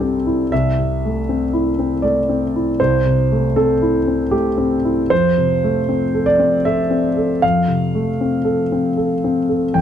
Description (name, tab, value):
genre	neoclassical minimalist piano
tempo	78 BPM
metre	3/4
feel	rubato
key	unclear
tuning	A4 = 440 Hz
part	dark concert grand piano	solo	0.0-9.8 s	C2 to G5	-15 LUFS	equal	none
room	light reverb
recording	close, detailed microphones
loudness	-15 LUFS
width	side -9 dB against mid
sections	0.0-9.8 A section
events	none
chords	0.0 C; 0.5 Am/C; 5.1 F